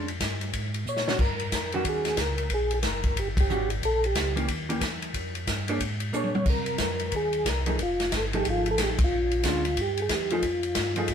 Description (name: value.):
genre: soul jazz organ trio.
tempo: 182 BPM.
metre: 4/4.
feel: swing 62% on 8ths.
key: unclear.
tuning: A4 = 443 Hz.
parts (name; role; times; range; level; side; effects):
hollow-body jazz guitar; accompaniment; 0.0-11.1 s; Eb3 to C#5; -30 LUFS; right 1 dB; none.
mellow tonewheel organ; bass; 0.0-11.1 s; F1 to C3; -32 LUFS; equal; slow rotary speaker.
swinging big-band drum kit; drums; 0.1-11.1 s; crash cymbal, hi-hat, kick drum, ride cymbal, snare drum, toms; -28 LUFS; left 1 dB; none.
percussive tonewheel organ; melody; 0.9-11.1 s; F4 to C#5; -28 LUFS; equal; chorus vibrato, slow rotary speaker.
room: moderate small room reverb, RT60 0.5 s.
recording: band playing live in one room.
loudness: -24 LUFS.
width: side -8 dB against mid.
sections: 0.0-11.1 A section.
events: drum fill 0.9-1.2, 6.1-6.5; band accent 3.3, 8.9.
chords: 0.0 Bbm7; 1.2 Eb7#9; 3.8 Edim7; 5.1 Bb7#9; 6.5 Cm7; 7.8 F7#9; 9.1 Bb7#9; 9.8 Emmaj7; 10.4 F7#9.